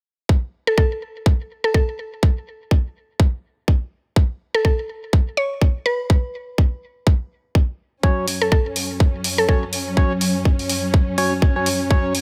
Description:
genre	bass house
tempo	124 BPM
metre	4/4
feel	swing 58% on 16ths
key	F# minor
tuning	A4 = 440 Hz
part	electronic kick drum	drums	0.3-12.0 s	none	-18 LUFS	equal	none
part	mallet-like synth pluck	melody	0.7-9.6 s	A4 to C#5	-24 LUFS	equal	chorus, delay
part	dark studio string section	sustained chords	8.0-12.2 s	F#2 to C#4	-27 LUFS	equal	sidechain pumping
part	percussive organ stab	stabs	8.0-12.1 s	F#3 to C#5	-25 LUFS	equal	chorus, vintage 12-bit sampler grit, sidechain pumping, delay
part	electronic hi-hat	drums	8.3-12.2 s	none	-26 LUFS	equal	none
room	little or no reverb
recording	none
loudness	-20 LUFS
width	mono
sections	0.3-12.2 A section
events	none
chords	0.3 F#5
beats	| 0.29 0.78 1.26 1.74 | 2.23 2.71 3.19 3.68 | 4.16 4.65 5.13 5.62 | 6.10 6.58 7.07 7.55 | 8.03 8.52 9.00 9.49 | 9.97 10.45 10.94 11.42 | 11.90

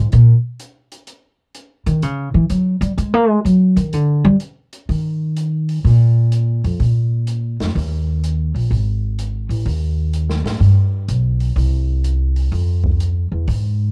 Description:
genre	jazz, small-group swing and bop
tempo	126 BPM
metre	4/4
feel	swing 67% on 8ths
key	Eb major from 4.9 s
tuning	A4 = 440 Hz
part	upright bass	bass	0.0-13.9 s	Ab1 to A#3	-17 LUFS	equal	none
part	open jazz drum kit	drums	0.1-13.6 s	hi-hat, kick drum, snare drum	-29 LUFS	equal	cassette tape
room	little or no reverb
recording	home recording on cassette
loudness	-17 LUFS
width	mono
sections	0.0-4.9 A section; 4.9-13.9 B section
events	upright bass solo 0.0-4.9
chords	none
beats	0.12 0.60 | 1.07 1.55 2.03 2.50 | 2.98 3.46 3.93 4.41 | 4.89 5.36 5.84 6.32 | 6.79 7.27 7.75 8.23 | 8.70 9.18 9.66 10.13 | 10.61 11.09 11.56 12.04 | 12.52 12.99 13.47

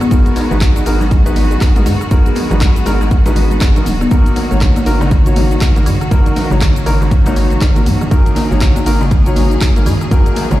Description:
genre	afro house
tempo	120 BPM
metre	4/4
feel	swing 60% on 16ths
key	G# minor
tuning	A4 = 437 Hz
part	rich symphonic string section	sustained chords	0.0-10.6 s	D#3 to G#4	-23 LUFS	right 1 dB	sidechain pumping
part	buzzing kalimba	arpeggios	0.0-10.6 s	C#3 to G#4	-19 LUFS	equal	sidechain pumping, ping-pong delay
part	deep house drum kit	drums	0.0-10.6 s	handclaps, hi-hat, rim click, shaker, toms	-24 LUFS	left 1 dB	none
part	felt-muted upright piano	stabs	0.1-10.6 s	F#3 to C#5	-21 LUFS	left 1 dB	sidechain pumping, ping-pong delay
part	round analog bass	bass	0.1-10.6 s	D#1 to G#2	-16 LUFS	equal	sidechain pumping
part	electronic kick drum	drums	0.1-10.2 s	none	-12 LUFS	equal	none
part	congas	percussion	0.1-10.6 s	none	-26 LUFS	right 3 dB	none
part	djembe	percussion	0.1-10.5 s	none	-25 LUFS	left 1 dB	none
room	little or no reverb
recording	played on a big sound system in a bare room, large studio reverb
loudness	-10 LUFS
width	side -15 dB against mid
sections	0.0-10.6 A section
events	none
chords	0.0 G#m7; 4.1 D#m/G#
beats	| 0.11 0.61 1.11 1.61 | 2.11 2.61 3.11 3.61 | 4.11 4.61 5.11 5.61 | 6.11 6.61 7.11 7.61 | 8.11 8.61 9.11 9.61 | 10.11

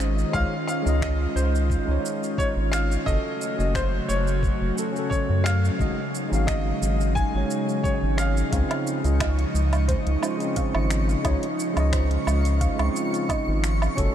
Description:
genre	sunset chillout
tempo	88 BPM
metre	4/4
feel	swing 53% on 16ths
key	Db major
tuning	A4 = 440 Hz
part	clear baby grand piano	melody	0.0-8.5 s	C5 to Ab5	-31 LUFS	left 1 dB	tape echo
part	tine electric piano	accompaniment	0.0-14.1 s	Ab3 to F5	-29 LUFS	equal	auto-pan, tape echo
part	airy breathy pad	sustained chords	0.0-14.1 s	Db3 to Eb5	-30 LUFS	equal	chorus
part	round analog bass	bass	0.0-14.1 s	Gb1 to Gb2	-23 LUFS	equal	none
part	deep house drum kit	drums	0.0-14.1 s	finger snaps, hi-hat, shaker, woodblock	-34 LUFS	right 2 dB	overdrive
part	electronic kick drum	drums	0.3-14.1 s	none	-27 LUFS	equal	none
part	soft round pluck	arpeggios	8.5-14.1 s	C5 to F5	-35 LUFS	right 2 dB	chorus, tape echo
part	twinkling granular texture	texture	8.9-14.1 s	Db6	-35 LUFS	right 1 dB	built-in reverb
room	moderate huge ambient reverb, RT60 8.6 s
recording	dreamy mix soaked in reverb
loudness	-21 LUFS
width	side -10 dB against mid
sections	0.0-14.1 A section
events	none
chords	0.0 Dbmaj9; 3.1 Gbm; 5.8 Ab7sus4; 8.5 Dbmaj9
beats	| 0.34 1.02 1.70 2.38 | 3.06 3.75 4.43 5.11 | 5.79 6.47 7.16 7.84 | 8.52 9.20 9.88 10.56 | 11.25 11.93 12.61 13.29 | 13.97

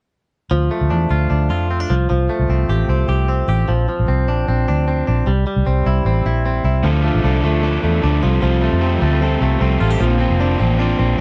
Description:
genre	indie pop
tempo	152 BPM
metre	4/4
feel	straight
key	D minor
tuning	A4 = 440 Hz
part	direct-recorded clean electric guitar	arpeggios	0.5-11.2 s	F3 to G4	-23 LUFS	equal	lush chorus
part	vintage muted fingered electric bass	bass	0.5-11.2 s	F1 to F2	-19 LUFS	equal	none
part	crunchy overdriven guitar	accompaniment	6.8-11.2 s	Bb2 to C5	-23 LUFS	equal	spring reverb
room	little or no reverb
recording	dry, close 1970s-style studio recording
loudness	-17 LUFS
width	mono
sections	0.5-6.8 A section; 6.8-11.2 B section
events	none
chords	0.5 Dm; 1.9 Fadd9; 3.7 Bbadd9; 5.3 C; 6.8 Dm; 8.2 Fadd9/C; 10.0 Bbadd9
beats	| 0.52 0.91 1.31 1.71 | 2.10 2.50 2.89 3.29 | 3.68 4.08 4.48 4.87 | 5.27 5.66 6.06 6.45 | 6.85 7.24 7.64 8.03 | 8.43 8.82 9.21 9.61 | 10.00 10.40 10.79 11.18

